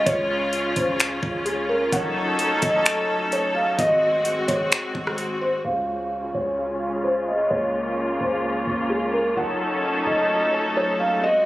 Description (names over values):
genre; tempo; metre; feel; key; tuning
hip hop, atmospheric cloud-rap; 129 BPM; 4/4; half-time; Db major; A4 = 440 Hz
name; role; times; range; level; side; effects
felt-muted upright piano; melody; 0.0-11.5 s; Ab4 to Gb5; -23 LUFS; equal; low-pass filter, ping-pong delay
clear symphonic string section; sustained chords; 0.0-11.5 s; Db3 to A4; -25 LUFS; left 1 dB; sidechain pumping, low-pass filter
clean 808-style bass; bass; 0.0-11.2 s; Gb1 to Db2; -38 LUFS; equal; none
wind-like tuned noise texture; texture; 0.0-11.5 s; Ab3 to Eb5; -32 LUFS; equal; built-in reverb
trap drum kit; drums; 0.1-5.3 s; finger snaps, hi-hat, kick drum, rim click; -24 LUFS; equal; none
room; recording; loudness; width
digital ambience; recorded on a phone in the room, club reverb; -20 LUFS; side -16 dB against mid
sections
0.0-5.6 A section; 5.6-11.5 B section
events
filter sweep 5.6-11.5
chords
0.0 Db; 1.9 Gbm6; 3.8 Ab7; 5.6 Db; 9.4 Gbm6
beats
| 0.07 0.53 1.00 1.46 | 1.93 2.39 2.86 3.32 | 3.79 4.25 4.72 5.18 | 5.65 6.11 6.58 7.04 | 7.51 7.97 8.44 8.90 | 9.37 9.83 10.30 10.76 | 11.23